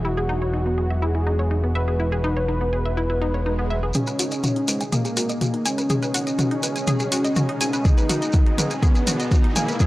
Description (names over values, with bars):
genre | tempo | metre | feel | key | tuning
melodic techno | 123 BPM | 4/4 | straight | G# minor | A4 = 439 Hz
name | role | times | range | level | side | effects
wide unison lead | melody | 0.0-9.9 s | A#3 to B4 | -25 LUFS | equal | analog delay
lush unison pad | sustained chords | 0.0-9.9 s | B2 to G#4 | -33 LUFS | equal | chorus, sidechain pumping
analog pluck | arpeggios | 0.0-9.9 s | B3 to G#5 | -29 LUFS | equal | chorus, sidechain pumping, tape echo
fat analog bass | bass | 0.0-9.7 s | E1 to G#2 | -25 LUFS | equal | sidechain pumping, high-pass filter
swell and riser | sound effects | 3.3-9.9 s | none | -36 LUFS | right 1 dB | none
deep house drum kit | drums | 3.9-9.9 s | hi-hat, toms | -25 LUFS | equal | none
shekere | percussion | 3.9-9.9 s | none | -29 LUFS | equal | none
electronic kick drum | drums | 7.9-9.9 s | none | -17 LUFS | equal | none
room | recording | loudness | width
little or no reverb | dry, gritty hardware recording, cassette tape | -19 LUFS | side -18 dB against mid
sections
0.0-3.9 A section; 3.9-9.9 B section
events
filter sweep on analog synth lead 0.0-3.9; swell 3.3-3.9; build-up 3.9-9.9; drum fill 3.9-9.9; filter sweep on synth pluck 3.9-9.9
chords
0.0 Eadd9; 3.9 G#m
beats
| 0.05 0.53 1.02 1.51 | 2.00 2.48 2.97 3.46 | 3.95 4.44 4.92 5.41 | 5.90 6.39 6.88 7.36 | 7.85 8.34 8.83 9.31 | 9.80